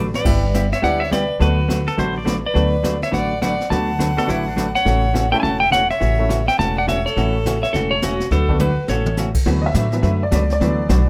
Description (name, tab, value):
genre	country, western swing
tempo	208 BPM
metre	4/4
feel	swing 62% on 8ths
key	D major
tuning	A4 = 444 Hz
part	pedal steel guitar	second line	0.0-4.7 s	D4 to D5	-28 LUFS	equal	none
part	vintage hollow-body jazz guitar	accompaniment	0.0-11.0 s	C#3 to B4	-26 LUFS	equal	none
part	upright bass	bass	0.0-11.1 s	E1 to A2	-23 LUFS	equal	none
part	clear fiddle	second line	0.1-9.2 s	C#4 to F#5	-30 LUFS	equal	none
part	jazz brush drum kit	drums	0.1-11.1 s	brushed snare drum, crash cymbal, hi-hat, kick drum, snare drum, toms	-28 LUFS	equal	none
part	clean lap steel guitar	melody	0.2-9.2 s	F#4 to A5	-23 LUFS	equal	plate reverb
part	honky-tonk upright piano	accompaniment	0.2-11.1 s	E3 to E5	-27 LUFS	equal	none
room	moderate club reverb, RT60 0.6 s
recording	none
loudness	-18 LUFS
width	mono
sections	0.0-9.5 A section; 9.5-11.1 B section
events	drum fill 0.0, 8.6-9.2; honky-tonk piano solo 9.5-11.1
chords	0.3 G6; 1.4 D6; 4.9 A6; 8.3 D6; 8.9 A6; 9.5 D6